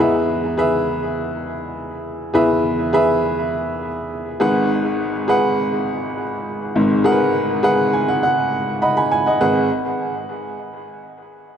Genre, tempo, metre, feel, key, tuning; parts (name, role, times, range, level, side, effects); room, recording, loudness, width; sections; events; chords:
pop; 102 BPM; 4/4; straight; G# minor; A4 = 441 Hz
clear upright piano; solo; 0.0-9.7 s; G#1 to B5; -17 LUFS; equal; tape echo
wet church reverb, RT60 3.1 s; dreamy mix soaked in reverb; -16 LUFS; side -8 dB against mid
0.0-9.4 A section; 9.4-11.6 B section
upright piano fill 7.6-9.4
0.0 E; 4.4 G#m7